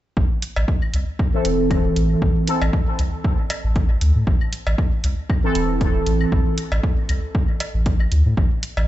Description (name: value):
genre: dub techno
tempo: 117 BPM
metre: 4/4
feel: swing 55% on 16ths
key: A minor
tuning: A4 = 440 Hz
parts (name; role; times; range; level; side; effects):
- soft dub sub bass; bass; 0.2-8.9 s; E1 to A2; -19 LUFS; equal; tube saturation, sidechain pumping
- electronic kick drum; drums; 0.2-8.5 s; none; -20 LUFS; equal; none
- electronic hi-hat; drums; 0.4-8.7 s; none; -30 LUFS; right 2 dB; none
- cowbell and claves; percussion; 0.6-8.9 s; none; -32 LUFS; equal; sidechain pumping on perc, dub echo
- resonant sweep polysynth; stabs; 1.3-6.5 s; E3 to A4; -23 LUFS; right 1 dB; chorus, phaser, sidechain pumping, dub echo
room: little or no reverb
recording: played on a big sound system in a bare room, large studio reverb, nothing above 8.0 kHz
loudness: -17 LUFS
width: side -14 dB against mid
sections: 0.2-8.9 A section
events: filter sweep on analog polysynth 0.2-8.9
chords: 0.2 Am